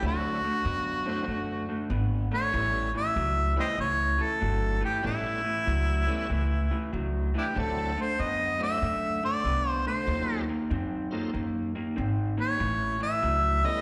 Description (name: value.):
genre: electric blues shuffle.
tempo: 95 BPM.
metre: 4/4.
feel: swing 66% on 8ths.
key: A mixolydian.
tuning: A4 = 440 Hz.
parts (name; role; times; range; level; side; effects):
warm harmonica; melody; 0.0-13.8 s; D4 to E5; -31 LUFS; equal; overdrive, slapback echo.
bright tonewheel organ; accompaniment; 0.0-13.8 s; F#3 to C5; -41 LUFS; equal; slow rotary speaker, overdrive, chorus vibrato, slapback echo.
electric guitar through a small old amp; riff; 0.0-13.8 s; A2 to B#3; -35 LUFS; equal; slapback echo.
upright bass; bass; 0.0-13.6 s; G1 to F#2; -33 LUFS; equal; none.
room: light reverb.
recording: live gig heard through the venue's PA, recital hall reverb.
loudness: -28 LUFS.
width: mono.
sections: 0.0-13.8 A section.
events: none.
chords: 0.0 D9; 2.5 A9; 7.6 D9; 10.1 D#dim7; 12.6 A9.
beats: | 0.02 0.65 1.27 1.90 | 2.53 3.16 3.79 4.42 | 5.04 5.67 6.30 6.93 | 7.56 8.19 8.82 9.45 | 10.08 10.71 11.34 11.96 | 12.59 13.22.